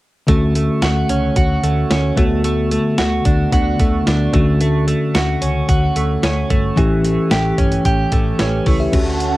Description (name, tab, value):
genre	1980s-style pop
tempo	111 BPM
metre	4/4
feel	straight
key	D major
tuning	A4 = 440 Hz
part	bell-like tine electric piano	accompaniment	0.3-9.4 s	D3 to E5	-18 LUFS	left 2 dB	none
part	direct-recorded clean electric guitar	riff	0.3-9.4 s	E3 to G4	-20 LUFS	right 3 dB	analog chorus
part	hollow-body short-scale fingered electric bass	bass	0.3-9.3 s	G1 to D2	-20 LUFS	equal	none
part	clean 12-bit digital drum machine	drums	0.3-9.3 s	crash cymbal, hi-hat, kick drum, snare drum	-18 LUFS	equal	cassette tape
part	phased analog pad	sustained chords	8.9-9.4 s	C#4 to A5	-21 LUFS	right 5 dB	phaser, chorus
room	moderate studio reverb, RT60 0.6 s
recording	home recording on cassette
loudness	-14 LUFS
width	side -18 dB against mid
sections	0.3-8.9 A section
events	none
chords	0.3 Dmaj7; 2.2 Bm7/D; 4.3 Dmaj7; 6.8 A7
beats	| 0.28 0.82 1.36 1.91 | 2.45 2.99 3.53 4.07 | 4.61 5.15 5.69 6.23 | 6.77 7.31 7.85 8.39 | 8.93